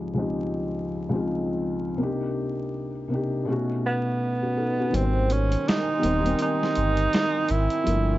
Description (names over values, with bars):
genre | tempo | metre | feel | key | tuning
lo-fi hip hop | 82 BPM | 4/4 | swing 59% on 16ths | Ab major | A4 = 440 Hz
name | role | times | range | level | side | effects
felt-muted upright piano | accompaniment | 0.0-8.2 s | Db2 to C5 | -26 LUFS | left 2 dB | cassette tape, low-pass filter
breathy tenor saxophone | melody | 3.9-8.2 s | B3 to Fb4 | -25 LUFS | right 3 dB | low-pass filter
warbly tape-like pad | sustained chords | 5.4-8.2 s | G4 to D6 | -36 LUFS | right 1 dB | chorus, built-in reverb, low-pass filter
sub bass with octave | bass | 4.9-8.2 s | Eb1 to Ab1 | -24 LUFS | equal | none
dusty soul sampler-style drum kit | drums | 4.9-8.1 s | hi-hat, snare drum | -29 LUFS | equal | none
room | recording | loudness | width
light reverb, small room reverb | vinyl crackle, nothing above 7.7 kHz | -23 LUFS | side -16 dB against mid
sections
0.0-4.9 A section; 4.9-8.2 B section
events
filter sweep 0.0-4.9; kick muted 4.9-8.2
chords
0.0 Dbmaj9#11; 2.0 Cm9; 3.5 B9; 4.9 Abmaj9